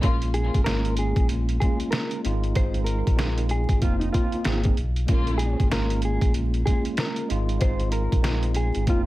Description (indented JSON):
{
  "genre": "hip hop, boom-bap hip-hop",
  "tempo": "95 BPM",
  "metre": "4/4",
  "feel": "swing 60% on 16ths",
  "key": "Bb minor",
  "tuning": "A4 = 437 Hz",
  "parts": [
    { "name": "mellow tine electric piano", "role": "accompaniment", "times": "0.0-9.1 s", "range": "Ab3 to Ab4", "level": "-29 LUFS", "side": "right 1 dB", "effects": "medium stereo tremolo, high-pass filter, low-pass filter, plate reverb" },
    { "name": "warm studio string section", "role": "stabs", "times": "0.0-0.3, 5.1-5.5 s", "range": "Db3 to F4", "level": "-34 LUFS", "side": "left 3 dB", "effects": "high-pass filter, low-pass filter, plate reverb, digital delay" },
    { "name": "sub bass with octave", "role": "bass", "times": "0.0-9.1 s", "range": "F1 to Cb2", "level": "-25 LUFS", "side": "equal", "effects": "none" },
    { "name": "trip hop sampler-style drum kit", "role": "drums", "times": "0.0-9.0 s", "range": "hi-hat, kick drum, snare drum", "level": "-24 LUFS", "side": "equal", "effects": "none" },
    { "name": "mellow electric guitar", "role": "melody", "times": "0.3-9.0 s", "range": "Eb4 to C5", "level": "-31 LUFS", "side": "right 1 dB", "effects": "harmonic tremolo, high-pass filter, low-pass filter, plate reverb, digital delay" }
  ],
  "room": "light reverb",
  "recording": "vinyl crackle",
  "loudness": "-21 LUFS",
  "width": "side -17 dB against mid",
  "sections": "0.0-5.1 A section; 5.1-9.1 A section",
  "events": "none",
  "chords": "0.0 Bbm7; 2.2 Ab6; 3.8 F7sus4; 4.5 Abadd9; 5.1 Bbm7; 7.3 Ab6"
}